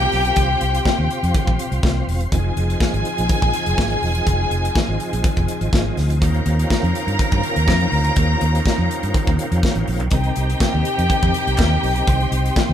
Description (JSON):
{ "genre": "disco", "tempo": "123 BPM", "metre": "4/4", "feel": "straight", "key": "unclear", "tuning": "A4 = 441 Hz", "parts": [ { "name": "rich studio string section", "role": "second line", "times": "0.0-12.7 s", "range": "G4 to Bb5", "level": "-23 LUFS", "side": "left 1 dB", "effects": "none" }, { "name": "tonewheel organ", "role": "sustained chords", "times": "0.0-12.7 s", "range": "C3 to C5", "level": "-26 LUFS", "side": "equal", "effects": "chorus vibrato, fast rotary speaker" }, { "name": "fingered electric bass", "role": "bass", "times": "0.0-12.7 s", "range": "E1 to G2", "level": "-20 LUFS", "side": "equal", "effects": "none" }, { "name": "modern studio drum kit", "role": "drums", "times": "0.0-12.7 s", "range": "hi-hat, kick drum, snare drum", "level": "-21 LUFS", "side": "equal", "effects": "none" }, { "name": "group handclap", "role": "percussion", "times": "10.6-12.7 s", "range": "none", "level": "-32 LUFS", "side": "right 2 dB", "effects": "none" } ], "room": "moderate studio reverb, RT60 0.6 s", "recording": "band playing live in one room", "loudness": "-16 LUFS", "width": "side -10 dB against mid", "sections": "0.0-10.1 A section; 10.1-12.7 B section", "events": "none", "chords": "0.0 C7sus4; 2.3 Fm7; 6.2 Eb13; 10.1 Cm7", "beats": "| 0.37 0.86 1.35 1.83 | 2.32 2.81 3.29 3.78 | 4.27 4.76 5.24 5.73 | 6.22 6.71 7.19 7.68 | 8.17 8.66 9.15 9.63 | 10.12 10.61 11.10 11.59 | 12.07 12.56" }